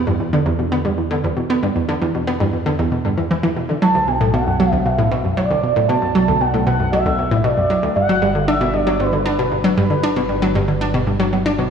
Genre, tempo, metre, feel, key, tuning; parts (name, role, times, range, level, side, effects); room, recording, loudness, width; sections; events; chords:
ambient, sequencer-driven space music; 116 BPM; 4/4; straight; E minor; A4 = 445 Hz
fat analog bass; bass; 0.0-11.7 s; G1 to E2; -25 LUFS; right 1 dB
analog pluck; riff; 0.1-11.7 s; D2 to D4; -17 LUFS; equal; chorus, tape echo
expressive synth lead; melody; 3.8-11.6 s; B4 to A5; -20 LUFS; right 1 dB; wide subtle chorus, tape echo
wet plate reverb, RT60 2.9 s; echo-heavy mix, studio ambience; -15 LUFS; side -7 dB against mid
0.0-11.7 A section
0.0 E7(no3); 3.8 Bm7; 8.0 G